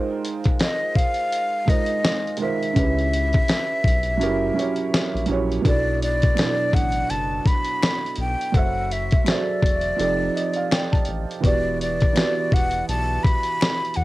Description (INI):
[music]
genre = lo-fi hip hop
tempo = 83 BPM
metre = 4/4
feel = swing 59% on 16ths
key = B minor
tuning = A4 = 440 Hz
[part]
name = felt-muted upright piano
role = accompaniment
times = 0.0-14.0 s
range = B2 to A#5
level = -26 LUFS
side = right 5 dB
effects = cassette tape
[part]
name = dusty soul sampler-style drum kit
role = drums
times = 0.2-14.0 s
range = hi-hat, kick drum, snare drum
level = -21 LUFS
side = left 1 dB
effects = cassette tape
[part]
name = breathy mellow silver concert flute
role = melody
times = 0.6-14.0 s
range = D5 to B5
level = -24 LUFS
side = left 1 dB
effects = none
[part]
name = round analog bass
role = bass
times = 2.8-14.0 s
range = E1 to E2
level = -26 LUFS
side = left 1 dB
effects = none
[part]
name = finger snap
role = percussion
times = 6.4-13.8 s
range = none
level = -36 LUFS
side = left 9 dB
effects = none
[sound]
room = light reverb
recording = home recording on cassette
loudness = -19 LUFS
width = side -18 dB against mid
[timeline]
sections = 0.0-5.7 A section; 5.7-14.0 B section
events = break 0.0-2.8; kick muted 4.2-5.7; felt piano fill 10.0-11.4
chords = 0.0 G#69; 2.8 C#m7b5; 4.2 F#7b9; 5.7 Bm7; 8.5 F#m7b5; 10.0 F13; 11.4 Em9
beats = 0.59 1.31 2.04 | 2.76 3.48 4.21 4.93 | 5.65 6.38 7.10 7.82 | 8.54 9.27 9.99 10.71 | 11.44 12.16 12.88 13.60